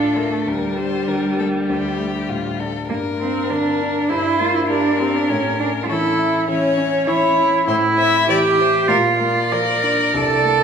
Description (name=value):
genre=quick classical-period movement for piano quartet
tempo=100 BPM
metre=4/4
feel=rubato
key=unclear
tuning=A4 = 440 Hz
part: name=rich violin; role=melody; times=0.0-10.6 s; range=F4 to E5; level=-24 LUFS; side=left 8 dB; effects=none
part: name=warm cello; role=second line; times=0.0-10.6 s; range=G3 to Bb4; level=-18 LUFS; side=right 3 dB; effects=none
part: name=rich viola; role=accompaniment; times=0.0-10.0 s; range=G3 to D5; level=-27 LUFS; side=equal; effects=none
part: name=warm grand piano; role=accompaniment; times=0.0-10.6 s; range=C2 to G4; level=-23 LUFS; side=left 2 dB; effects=none
room=wet recital hall reverb, RT60 1.7 s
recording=recorded in a church or concert hall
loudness=-16 LUFS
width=side -7 dB against mid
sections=0.0-10.6 A section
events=none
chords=0.5 Gm/D; 1.7 D5; 2.9 Gm; 4.1 Gmadd11; 5.3 A; 7.7 Am; 8.9 Bb